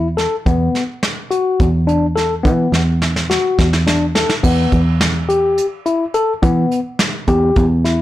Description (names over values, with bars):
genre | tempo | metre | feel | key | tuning
progressive instrumental, band music in an uneven meter | 211 BPM (eighths) | 7/8 | straight | E minor | A4 = 442 Hz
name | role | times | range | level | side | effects
bright tine electric piano | arpeggios | 0.0-8.0 s | B3 to A4 | -17 LUFS | left 3 dB | none
picked electric bass | bass | 0.0-8.0 s | E2 to E3 | -16 LUFS | right 1 dB | none
soft brush drum kit | drums | 0.2-8.0 s | crash cymbal, hi-hat, kick drum, snare drum | -18 LUFS | right 1 dB | soft clipping on snare
room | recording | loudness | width
light reverb | blown-out, overdriven recording, overdrive | -13 LUFS | side -14 dB against mid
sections
0.0-4.4 A section; 4.4-8.0 B section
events
drum fill 2.7-4.4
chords
0.5 B5/E; 4.4 Em